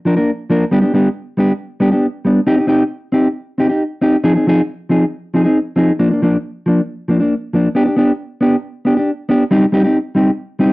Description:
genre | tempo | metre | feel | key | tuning
highlife | 136 BPM | 4/4 | straight | C minor | A4 = 439 Hz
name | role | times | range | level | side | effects
mellow electric guitar | solo | 0.1-10.7 s | F3 to Bb4 | -12 LUFS | equal | cassette tape
room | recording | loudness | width
wet studio reverb, RT60 0.5 s | home recording on cassette, nothing above 10.4 kHz | -13 LUFS | side -21 dB against mid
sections
0.0-9.5 A section; 9.5-10.7 B section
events
none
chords
0.0 Bb; 0.7 G; 2.5 Cm; 4.2 Fm7; 6.0 Bb; 7.8 G; 9.5 Cm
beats
0.28 | 0.72 1.16 1.60 2.04 | 2.48 2.92 3.36 3.80 | 4.24 4.68 5.12 5.56 | 6.00 6.44 6.88 7.32 | 7.76 8.20 8.63 9.07 | 9.51 9.95 10.38

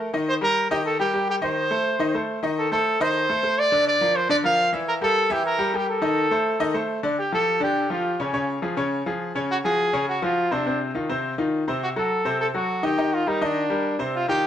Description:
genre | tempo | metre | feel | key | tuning
latin | 208 BPM | 4/4 | straight | unclear | A4 = 441 Hz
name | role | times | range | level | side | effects
bright grand piano | accompaniment | 0.0-14.5 s | C3 to E5 | -24 LUFS | left 2 dB | none
clear trumpet | melody | 0.3-14.5 s | Db4 to F5 | -22 LUFS | right 1 dB | plate reverb, analog delay
room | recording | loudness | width
moderate studio reverb, RT60 0.5 s | none | -20 LUFS | side -10 dB against mid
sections
0.0-7.2 A section; 7.2-14.5 B section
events
none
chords
0.3 Eb; 1.4 Cm6/Eb; 3.7 Bb; 4.9 Edim; 6.0 Cm69; 7.2 Dmadd11; 8.3 Db; 9.5 Gb5; 10.7 F5; 11.8 Cdim7; 13.0 Ebmaj7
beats
| 0.27 0.56 0.85 1.13 | 1.42 1.71 2.00 2.28 | 2.57 2.86 3.14 3.43 | 3.72 4.01 4.29 4.58 | 4.87 5.16 5.44 5.73 | 6.02 6.31 6.60 6.89 | 7.17 7.46 7.75 8.04 | 8.33 8.62 8.91 9.20 | 9.49 9.78 10.07 10.36 | 10.65 10.94 11.23 11.52 | 11.81 12.10 12.39 12.68 | 12.97 13.26 13.55 13.84 | 14.13 14.42

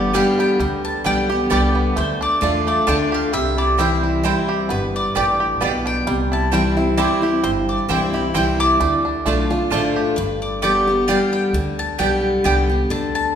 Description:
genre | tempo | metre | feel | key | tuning
bluegrass | 132 BPM | 3/4 | swing 54% on 8ths | unclear | A4 = 440 Hz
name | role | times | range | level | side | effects
bluegrass banjo | melody | 0.0-10.2 s | G3 to G4 | -26 LUFS | right 5 dB | none
mandolin | melody | 0.0-13.4 s | B4 to A5 | -23 LUFS | left 1 dB | none
picked steel-string acoustic guitar | accompaniment | 0.0-13.3 s | G2 to G4 | -20 LUFS | left 1 dB | none
upright bass | bass | 0.0-13.4 s | G1 to E2 | -25 LUFS | equal | none
mandolin | stabs | 0.1-12.5 s | A3 to A5 | -25 LUFS | right 4 dB | none
room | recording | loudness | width
wet recital hall reverb, RT60 1.7 s | recorded in a church or concert hall | -16 LUFS | side -8 dB against mid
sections
0.0-10.2 A section; 10.2-13.4 A section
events
none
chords
0.0 G; 2.0 Dm; 3.3 C; 4.7 G; 6.1 C; 8.8 Dm; 10.2 G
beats
0.14 | 0.60 1.05 1.51 | 1.97 2.42 2.88 | 3.33 3.79 4.25 | 4.70 5.16 5.62 | 6.07 6.53 6.98 | 7.44 7.89 8.35 | 8.80 9.26 9.72 | 10.17 10.63 11.08 | 11.54 11.99 12.45 | 12.90

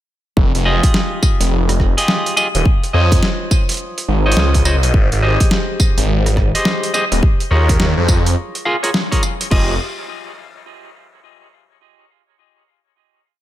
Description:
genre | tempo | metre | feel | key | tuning
glitch hop | 105 BPM | 4/4 | swing 63% on 16ths | F minor | A4 = 440 Hz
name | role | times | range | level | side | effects
phased detuned saw bass | bass | 0.4-9.8 s | Eb1 to F2 | -15 LUFS | equal | phaser
electronic kick drum | drums | 0.4-9.7 s | none | -15 LUFS | equal | none
boom bap sampler-style drum kit | drums | 0.5-9.7 s | crash cymbal, hi-hat, rim click, snare drum, tambourine | -21 LUFS | equal | overdrive
clean electric guitar | stabs | 0.7-9.7 s | F4 to F5 | -20 LUFS | equal | vintage 12-bit sampler grit, sidechain pumping, ping-pong delay
room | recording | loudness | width
light reverb, digital ambience | none | -13 LUFS | side -13 dB against mid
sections
0.4-9.5 drop; 9.5-11.8 final chord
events
drop 0.4-9.5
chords
0.4 Fm9; 2.7 Dbmaj9; 4.9 Abmaj7; 7.2 Bbm7; 9.5 N.C.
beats
| 0.37 0.94 1.51 2.08 | 2.65 3.23 3.80 4.37 | 4.94 5.51 6.08 6.66 | 7.23 7.80 8.37 8.94 | 9.51

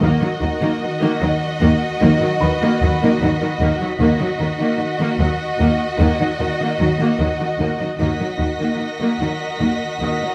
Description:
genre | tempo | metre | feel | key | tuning
cinematic, suspense film score | 75 BPM | 5/4 | straight | Eb minor | A4 = 439 Hz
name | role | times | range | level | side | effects
dark symphonic violin section | melody | 0.0-10.3 s | Eb5 | -28 LUFS | equal | none
rich symphonic violin section | second line | 0.0-10.3 s | Gb4 | -30 LUFS | equal | none
rich symphonic viola section | accompaniment | 0.0-10.3 s | Eb3 to Bb3 | -24 LUFS | equal | none
ethereal airy pad | sustained chords | 0.0-10.3 s | Gb4 to Gb5 | -30 LUFS | equal | ensemble chorus, built-in reverb
rich symphonic cello section | riff | 0.0-10.3 s | Eb3 to Eb4 | -28 LUFS | equal | none
rich symphonic cello section | bass | 0.0-10.3 s | Eb3 | -25 LUFS | equal | none
warm symphonic double bass section | bass | 0.0-10.1 s | Eb2 | -24 LUFS | equal | none
felt-muted upright piano | texture | 0.0-10.3 s | Cb5 to Eb6 | -33 LUFS | equal | none
rich symphonic violin section | texture | 0.0-10.3 s | Bb6 to Cb7 | -37 LUFS | equal | none
room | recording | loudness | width
moderate scoring stage reverb, RT60 1.7 s | none | -19 LUFS | mono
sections
0.0-10.3 A section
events
none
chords
0.0 Ebm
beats
| 0.02 0.82 1.61 2.41 3.21 | 4.00 4.79 5.59 6.40 7.20 | 8.00 8.81 9.61

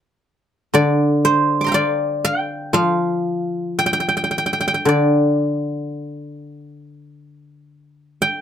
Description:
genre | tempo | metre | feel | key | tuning
chinese traditional, Chinese solo plucked strings | 49-60 BPM | 4/4 | rubato | D jue mode | A4 = 440 Hz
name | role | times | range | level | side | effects
guzheng | solo | 0.7-8.4 s | D3 to D6 | -17 LUFS | equal | none
room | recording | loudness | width
light reverb | close, detailed microphones | -16 LUFS | side -9 dB against mid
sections
0.0-8.4 A section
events
none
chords
none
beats
| 0.74 1.75 2.76 3.80 | 4.86 5.93 7.05 8.22

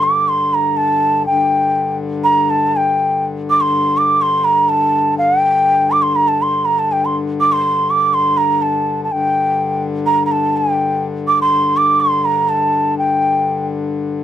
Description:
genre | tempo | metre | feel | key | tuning
indian classical, Hindustani | 123 BPM | 4/4 | straight | G raga bhimpalasi | A4 = 440 Hz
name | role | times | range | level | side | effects
breathy mellow bansuri | melody | 0.0-13.7 s | G5 to D6 | -13 LUFS | right 1 dB | none
hand-pumped harmonium | drone | 0.0-14.2 s | G2 to D3 | -21 LUFS | left 4 dB | none
room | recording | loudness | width
light reverb | close, detailed microphones | -13 LUFS | side -11 dB against mid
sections
0.0-1.3 A section; 1.3-14.2 B section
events
speeding up 0.0-14.2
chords
none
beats
0.28 0.78 | 1.27 1.76 2.26 2.75 | 3.24 3.73 4.22 4.71 | 5.21 5.69 6.18 6.67 | 7.16 7.65 8.13 8.62 | 9.11 9.59 10.07 10.56 | 11.04 11.53 12.01 12.49 | 12.97 13.45 13.93

